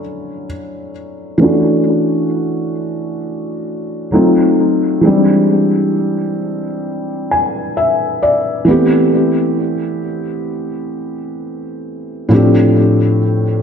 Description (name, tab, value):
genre	R&B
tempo	66 BPM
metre	4/4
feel	straight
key	unclear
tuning	A4 = 441 Hz
part	felt-muted upright piano	solo	0.0-13.6 s	A2 to G#5	-13 LUFS	equal	low-pass filter, ping-pong delay
room	wet lush hall reverb, RT60 1.5 s, small room ambience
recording	dreamy mix soaked in reverb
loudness	-12 LUFS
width	side -7 dB against mid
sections	0.0-1.4 A section; 1.4-13.6 B section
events	felt piano solo 0.0-1.4; filter sweep on felt piano 1.4-13.6; felt piano fill 6.9-8.7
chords	0.0 Dmaj9; 4.1 D#dim7; 5.0 E7alt; 8.7 Am9; 12.3 F69/A